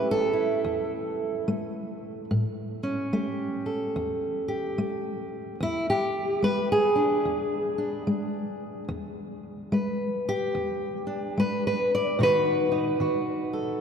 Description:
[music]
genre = acoustic country blues, solo or duo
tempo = 73 BPM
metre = 4/4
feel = swing 63% on 8ths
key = E mixolydian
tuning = A4 = 440 Hz
[part]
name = fingerpicked steel-string acoustic guitar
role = solo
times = 0.0-13.8 s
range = E2 to D5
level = -25 LUFS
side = equal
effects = none
[sound]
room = wet cathedral reverb, RT60 5.5 s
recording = in a vast, echoing space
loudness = -25 LUFS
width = side -7 dB against mid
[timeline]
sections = 0.0-13.8 A section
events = none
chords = 0.0 A7; 5.6 E7; 12.2 B7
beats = 0.64 1.47 | 2.30 3.13 3.95 4.78 | 5.61 6.43 7.26 8.08 | 8.90 9.73 10.55 11.38 | 12.20 13.02

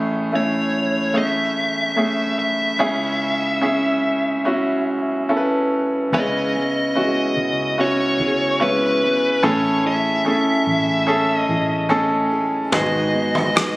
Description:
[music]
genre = pop ballad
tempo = 73 BPM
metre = 4/4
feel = straight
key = unclear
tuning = A4 = 440 Hz
[part]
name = bright grand piano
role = accompaniment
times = 0.0-13.8 s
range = A1 to C#5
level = -19 LUFS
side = equal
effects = none
[part]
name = smooth overdriven lead guitar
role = melody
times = 0.4-13.8 s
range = B4 to E5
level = -21 LUFS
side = left 1 dB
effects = none
[part]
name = fingerpicked steel-string acoustic guitar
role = arpeggios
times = 6.1-13.8 s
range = G#2 to G#4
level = -27 LUFS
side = left 1 dB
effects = none
[part]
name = vintage muted fingered electric bass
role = bass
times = 6.1-13.8 s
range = G#1 to C#2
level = -31 LUFS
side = equal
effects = none
[part]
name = loose indie drum kit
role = drums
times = 12.7-13.8 s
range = kick drum, rim click, toms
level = -20 LUFS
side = equal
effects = none
[sound]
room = light reverb, studio reverb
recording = recorded on a phone in the room, club reverb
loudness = -17 LUFS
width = side -21 dB against mid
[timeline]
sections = 0.0-6.1 A section; 6.1-13.8 B section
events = none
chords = 0.0 Amaj7; 2.8 C#m; 6.1 C#m7; 9.4 Amaj7; 12.7 G#m7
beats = 0.33 1.15 1.97 | 2.79 3.62 4.46 5.30 | 6.13 6.96 7.78 8.61 | 9.44 10.26 11.08 11.90 | 12.73 13.56

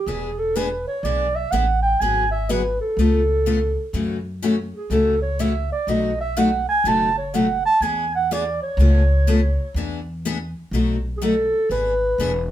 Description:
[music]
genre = acoustic string swing (jazz manouche)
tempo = 124 BPM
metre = 4/4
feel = swing 65% on 8ths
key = E mixolydian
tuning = A4 = 440 Hz
[part]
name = breathy clarinet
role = melody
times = 0.0-12.5 s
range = G#4 to A5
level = -21 LUFS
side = right 2 dB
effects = none
[part]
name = picked steel-string acoustic guitar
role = accompaniment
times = 0.1-12.3 s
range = B2 to A4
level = -23 LUFS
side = left 3 dB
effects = none
[part]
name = upright bass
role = bass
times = 0.1-12.5 s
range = E1 to F#2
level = -23 LUFS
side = equal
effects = none
[sound]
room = moderate small room reverb, RT60 0.6 s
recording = band playing live in one room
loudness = -18 LUFS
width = side -12 dB against mid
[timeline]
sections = 0.0-11.7 A section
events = clarinet solo 0.0-11.7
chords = 0.1 E7; 2.0 G#m7b5; 3.0 C#aug7; 3.9 F#m7; 5.9 B7; 7.8 E7; 8.8 C#aug7; 9.8 E7; 10.7 B7; 11.7 E7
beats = | 0.07 0.55 1.03 1.52 | 2.00 2.49 2.97 3.46 | 3.94 4.43 4.91 5.40 | 5.88 6.37 6.85 7.34 | 7.82 8.31 8.79 9.28 | 9.76 10.24 10.73 11.21 | 11.70 12.18

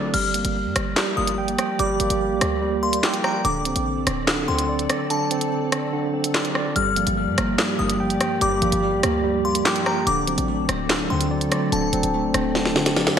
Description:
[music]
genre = hip hop, drill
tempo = 145 BPM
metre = 4/4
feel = half-time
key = G minor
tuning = A4 = 438 Hz
[part]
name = delicate synth tine bell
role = second line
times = 0.0-13.2 s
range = A5 to F6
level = -27 LUFS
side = left 3 dB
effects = chorus, digital delay
[part]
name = mellow electric guitar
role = accompaniment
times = 0.0-0.1, 6.8-13.2 s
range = G2 to C4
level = -27 LUFS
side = left 2 dB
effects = lush chorus
[part]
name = tine electric piano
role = arpeggios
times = 0.0-13.2 s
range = D3 to G5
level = -24 LUFS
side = right 3 dB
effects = fast stereo tremolo, digital delay
[part]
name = short 808-style bass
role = bass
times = 0.0-13.2 s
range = D1 to A2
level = -28 LUFS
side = equal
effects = none
[part]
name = glassy FM pad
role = sustained chords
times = 0.5-13.2 s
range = F3 to D5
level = -31 LUFS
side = left 1 dB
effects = ensemble chorus, built-in reverb
[part]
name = drill drum kit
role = drums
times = 0.1-13.2 s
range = crash cymbal, handclaps, hi-hat, rim click, snare drum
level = -24 LUFS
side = equal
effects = gated reverb
[sound]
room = wet lush hall reverb, RT60 1.7 s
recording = bright 1980s-style digital production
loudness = -19 LUFS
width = side -8 dB against mid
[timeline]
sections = 0.1-13.2 A section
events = kick muted 5.1-6.8; drum fill 12.6-13.2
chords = 0.1 Gm7; 3.4 D7; 6.8 Gm7; 10.1 D7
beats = | 0.14 0.55 0.96 1.38 | 1.79 2.21 2.62 3.03 | 3.45 3.86 4.28 4.69 | 5.10 5.52 5.93 6.34 | 6.76 7.17 7.58 8.00 | 8.41 8.83 9.24 9.65 | 10.07 10.48 10.90 11.31 | 11.72 12.14 12.55 12.96

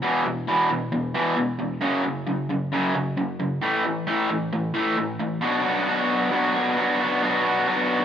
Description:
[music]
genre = rock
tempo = 133 BPM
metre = 4/4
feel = straight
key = unclear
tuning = A4 = 440 Hz
[part]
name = raw garage guitar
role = solo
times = 0.0-8.0 s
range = E2 to F#4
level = -21 LUFS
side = equal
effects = overdrive
[sound]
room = light reverb, digital ambience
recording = rough home demo mix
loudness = -21 LUFS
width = side -9 dB against mid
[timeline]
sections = 0.0-5.4 A section; 5.4-8.0 B section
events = none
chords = 0.0 E5; 1.8 F#5; 3.6 A5; 5.4 Bm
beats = | 0.04 0.49 0.93 1.38 | 1.83 2.28 2.73 3.18 | 3.63 4.08 4.53 4.98 | 5.43 5.88 6.33 6.78 | 7.23 7.68

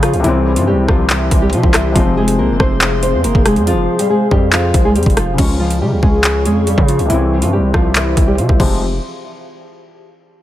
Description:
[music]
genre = hip hop, drill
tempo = 140 BPM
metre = 4/4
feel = half-time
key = F harmonic minor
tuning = A4 = 440 Hz
[part]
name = nylon-string guitar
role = melody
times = 0.0-8.8 s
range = E3 to Db5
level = -18 LUFS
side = right 1 dB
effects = low-pass filter, tape echo
[part]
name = felt-muted upright piano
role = accompaniment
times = 0.0-8.8 s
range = C3 to Db4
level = -20 LUFS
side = left 4 dB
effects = low-pass filter
[part]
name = warbly tape-like pad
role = sustained chords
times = 0.0-8.8 s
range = G4 to Db6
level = -22 LUFS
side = left 1 dB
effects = chorus, built-in reverb, phaser, low-pass filter
[part]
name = distorted 808-style bass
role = bass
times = 0.0-9.0 s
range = E1 to Db3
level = -17 LUFS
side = equal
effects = distortion
[part]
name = drill drum kit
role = drums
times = 0.0-8.7 s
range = crash cymbal, handclaps, hi-hat, kick drum, rim click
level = -15 LUFS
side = equal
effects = overdrive
[sound]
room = little or no reverb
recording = none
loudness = -11 LUFS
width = side -13 dB against mid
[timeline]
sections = 0.0-5.4 A section; 5.4-8.8 B section; 8.8-10.4 C section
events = none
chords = 0.2 C; 2.0 Fm; 5.4 Db; 7.1 C; 8.6 Fm; 8.8 N.C.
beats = | 0.24 0.67 1.10 1.53 | 1.96 2.38 2.81 3.24 | 3.67 4.10 4.53 4.96 | 5.38 5.81 6.24 6.67 | 7.10 7.53 7.96 8.38 | 8.81

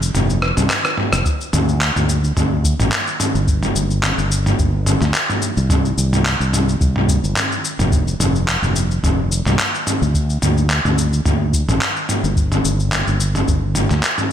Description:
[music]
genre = sunset chillout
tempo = 108 BPM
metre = 4/4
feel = swing 54% on 16ths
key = unclear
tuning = A4 = 441 Hz
[part]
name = fretless electric bass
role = bass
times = 0.0-14.0 s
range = F1 to D2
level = -18 LUFS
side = equal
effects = none
[part]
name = dusty soul sampler-style drum kit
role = drums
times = 0.0-14.3 s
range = cabasa, handclaps, rim click, toms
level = -18 LUFS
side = equal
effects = none
[part]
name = electronic kick drum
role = drums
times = 1.3-13.6 s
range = none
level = -19 LUFS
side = equal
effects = none
[sound]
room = little or no reverb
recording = none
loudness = -15 LUFS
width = side -10 dB against mid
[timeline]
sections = 0.0-1.3 A section; 1.3-14.3 A section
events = kick drops out 0.1-1.3; drum fill 0.4-1.3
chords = none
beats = 0.14 0.70 | 1.25 1.81 2.37 2.92 | 3.48 4.03 4.59 5.14 | 5.70 6.25 6.81 7.37 | 7.92 8.48 9.03 9.59 | 10.14 10.70 11.26 11.81 | 12.37 12.92 13.48 14.03

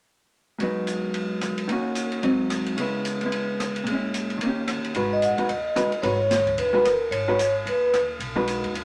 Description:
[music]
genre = jazz, small-group swing and bop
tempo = 221 BPM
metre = 4/4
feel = swing 59% on 8ths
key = G# minor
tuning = A4 = 438 Hz
[part]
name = vintage hollow-body jazz guitar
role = accompaniment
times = 0.6-8.7 s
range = G#2 to B4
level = -27 LUFS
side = equal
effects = none
[part]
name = open jazz drum kit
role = drums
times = 0.6-8.8 s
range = hi-hat, kick drum, ride cymbal, rim click, snare drum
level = -34 LUFS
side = equal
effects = none
[part]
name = upright bass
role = bass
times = 5.0-8.8 s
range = G#1 to D#2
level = -37 LUFS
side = equal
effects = none
[part]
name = vibraphone with soft mallets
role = melody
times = 5.1-7.9 s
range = A#4 to F#5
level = -24 LUFS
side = equal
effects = none
[sound]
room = wet studio reverb, RT60 0.5 s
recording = none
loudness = -25 LUFS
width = mono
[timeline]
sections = 0.6-4.9 A section; 4.9-8.8 B section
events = none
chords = 0.6 G#m7; 1.7 D#m7; 2.2 G#7; 2.8 C#m7; 3.9 A#m7b5; 4.4 D#7; 4.9 G#m7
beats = | 0.60 0.87 1.15 1.42 | 1.69 1.96 2.23 2.50 | 2.78 3.05 3.32 3.59 | 3.86 4.13 4.41 4.68 | 4.95 5.22 5.49 5.76 | 6.04 6.31 6.58 6.85 | 7.12 7.39 7.66 7.93 | 8.21 8.48 8.75

